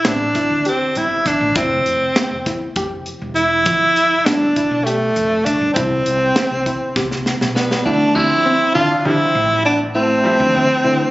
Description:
progressive instrumental, band music in an uneven meter; 200 BPM (eighths); 7/8; straight; A4 = 440 Hz
clear tenor saxophone; melody; 0.0-11.1 s; A3 to F4; -15 LUFS; equal
tight funk drum kit; drums; 0.0-7.9 s; hi-hat, kick drum, snare drum; -21 LUFS; equal
soft round pluck; arpeggios; 0.1-11.0 s; F3 to G4; -24 LUFS; equal; chorus
woody fretless electric bass; bass; 0.1-11.1 s; E1 to D3; -25 LUFS; equal
clean electric guitar; second line; 7.6-11.1 s; G3 to D4; -23 LUFS; right 1 dB; ensemble chorus
bright grand piano; accompaniment; 8.1-11.1 s; F3 to E4; -25 LUFS; left 1 dB
light reverb; recorded on a phone in the room, club reverb, nothing above 7.7 kHz; -14 LUFS; side -18 dB against mid
0.0-7.9 A section; 7.9-11.1 B section
drum fill 7.0-7.9
0.0 Am7; 1.6 F5; 3.7 G13; 5.8 Cmaj7; 7.9 Dm11
0.05 0.35 0.66 0.96 1.26 | 1.56 1.86 2.16 2.46 2.76 3.06 3.36 | 3.66 3.96 4.26 4.57 4.87 5.17 5.46 | 5.76 6.06 6.36 6.66 6.96 7.26 7.56 | 7.86 8.16 8.46 8.76 9.05 9.35 9.65 | 9.95 10.25 10.55 10.85

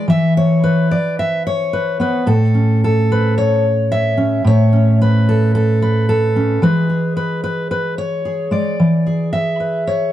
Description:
folk, solo fingerstyle acoustic guitar; 110 BPM; 4/4; straight; A major; A4 = 440 Hz
fingerpicked steel-string acoustic guitar; solo; 0.0-10.1 s; A2 to E5; -13 LUFS; equal
light reverb; dark, warm production; -13 LUFS; side -12 dB against mid
0.0-10.1 A section
0.0 E5; 2.3 Aadd9; 6.6 E
| 0.09 0.63 1.18 1.72 | 2.27 2.82 3.36 3.91 | 4.45 5.00 5.54 6.08 | 6.62 7.16 7.70 8.24 | 8.78 9.33 9.87

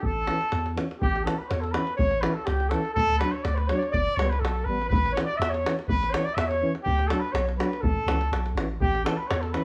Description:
balkan folk, Balkan brass band; 123 BPM; 2/4; straight; A mixolydian; A4 = 438 Hz
mellow trumpet; melody; 0.0-9.6 s; G4 to E5; -31 LUFS; equal
warm flugelhorn; second line; 0.0-9.6 s; G4 to E5; -34 LUFS; equal
punchy sub bass; bass; 0.0-9.6 s; G1 to E2; -31 LUFS; equal
davul; percussion; 0.0-9.6 s; -32 LUFS; equal
mellow trombone; accompaniment; 0.3-9.6 s; E3 to G3; -35 LUFS; equal
warm euphonium; accompaniment; 0.3-9.6 s; B3 to D4; -38 LUFS; equal
moderate large studio reverb, RT60 0.9 s; band playing live in one room; -26 LUFS; mono
0.0-1.0 A section; 1.0-8.8 B section
0.0 A; 3.0 D; 3.9 G; 4.9 A; 6.9 D; 7.8 A
| 0.03 0.52 | 1.01 1.50 | 1.99 2.48 | 2.97 3.46 | 3.94 4.43 | 4.92 5.41 | 5.90 6.38 | 6.87 7.36 | 7.84 8.33 | 8.81 9.30

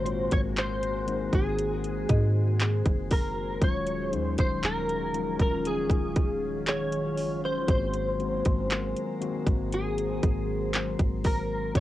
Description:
contemporary R&B; 59 BPM; 4/4; straight; A4 = 439 Hz
direct-recorded clean electric guitar; melody; 0.0-11.8 s; Ab4 to Db5; -31 LUFS; equal; ensemble chorus, cassette tape, analog delay
mellow tine electric piano; accompaniment; 0.0-11.8 s; Eb3 to Gb4; -33 LUFS; left 5 dB; medium stereo tremolo, cassette tape
glassy FM pad; sustained chords; 0.0-11.8 s; Eb3 to C5; -36 LUFS; equal; ensemble chorus, built-in reverb, sidechain pumping, cassette tape
soft 808-style bass; bass; 0.0-11.8 s; Eb1 to Ab2; -32 LUFS; equal
trap drum kit; drums; 0.1-11.8 s; handclaps, hi-hat, kick drum; -26 LUFS; equal; cassette tape
mallet-like synth pluck; texture; 0.1-7.7 s; Ab4 to Eb5; -39 LUFS; right 2 dB; chorus, cassette tape, analog delay, plate reverb
light reverb; home recording on cassette; -25 LUFS; side -14 dB against mid
0.0-11.8 A section
0.0 Ab9; 3.6 Ebm11; 7.7 Ab9
0.57 1.58 2.60 | 3.62 4.63 5.65 6.67 | 7.68 8.70 9.72 10.73 | 11.75

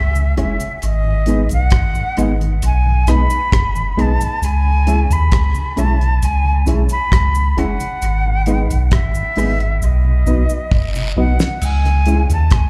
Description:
roots reggae; 67 BPM; 4/4; straight; C# minor; A4 = 440 Hz
jazz flute; melody; 0.0-12.7 s; D#5 to B5; -24 LUFS; equal; dub echo, slapback echo
warm sub bass; bass; 0.0-12.7 s; F#1 to D#2; -17 LUFS; equal
mellow electric guitar; accompaniment; 0.2-12.2 s; F#3 to G#4; -27 LUFS; equal; vibrato effect, slapback echo
mellow tonewheel organ; accompaniment; 0.2-12.4 s; G#2 to E4; -29 LUFS; equal; chorus vibrato, stopped rotary speaker
cabasa and guiro; percussion; 0.2-12.5 s; -36 LUFS; equal
reed electric piano; stabs; 0.4-12.2 s; D#4 to E5; -29 LUFS; equal; fast tremolo, slapback echo
damped 70s drum kit; drums; 0.4-12.7 s; crash cymbal, hi-hat, kick drum, rim click, snare drum; -20 LUFS; equal; dub echo
studio ambience; live gig heard through the venue's PA, club reverb; -16 LUFS; mono
0.0-11.6 A section; 11.6-12.7 B section
drum fill 9.8-11.6
0.0 C#m; 0.8 G#m; 4.4 C#m; 8.0 G#m; 9.8 B; 11.6 C#m
| 0.82 1.72 2.62 3.52 | 4.42 5.32 6.22 7.12 | 8.02 8.92 9.82 10.72 | 11.62 12.52

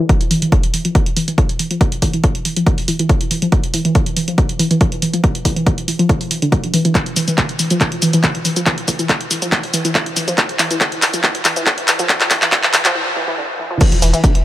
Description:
driving peak-time techno; 140 BPM; 4/4; straight; A4 = 439 Hz
warbly dusty pluck; riff; 0.0-14.3 s; D3 to G3; -19 LUFS; equal; chorus, cassette tape, sidechain pumping, digital delay
electronic kick drum; drums; 0.1-14.3 s; -15 LUFS; equal
punchy analog drum machine; drums; 0.1-14.4 s; crash cymbal, handclaps, hi-hat, shaker; -17 LUFS; equal
warm sub bass; bass; 13.9-14.4 s; E1; -16 LUFS; equal; sidechain pumping, low-pass filter
light reverb; high-pass filter; -13 LUFS; side -14 dB against mid
0.1-13.8 A section
build-up 0.1-13.8; filter sweep on synth arpeggio sound 0.1-13.8; filter sweep 0.1-13.8; drum fill 7.0-13.0; break 13.0-13.8
0.1 Dmadd9 (rootless); 13.8 E5
| 0.09 0.52 0.95 1.38 | 1.81 2.24 2.67 3.09 | 3.52 3.95 4.38 4.81 | 5.24 5.67 6.09 6.52 | 6.95 7.38 7.81 8.24 | 8.66 9.09 9.52 9.95 | 10.38 10.81 11.24 11.66 | 12.09 12.52 12.95 13.38 | 13.81 14.24

